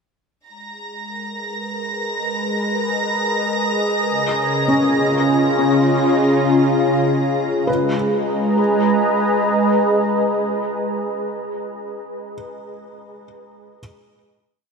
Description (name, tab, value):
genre	ambient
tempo	50 BPM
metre	3/4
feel	straight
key	G# dorian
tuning	A4 = 439 Hz
part	warm analog pad	sustained chords	0.5-12.1 s	C#3 to A#5	-18 LUFS	equal	chorus
part	dark chamber violin section	texture	0.5-7.7 s	A#5 to A#6	-25 LUFS	right 2 dB	none
part	felt-muted upright piano	arpeggios	4.7-13.8 s	C#4 to B4	-24 LUFS	left 1 dB	ping-pong delay
room	wet huge ambient reverb, RT60 8.1 s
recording	dreamy mix soaked in reverb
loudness	-16 LUFS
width	side -5 dB against mid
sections	0.5-7.7 A section; 7.7-11.3 final chord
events	fade-in on analog synth pad 0.5-7.7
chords	0.5 G#madd9; 4.1 C#add9; 7.7 G#madd9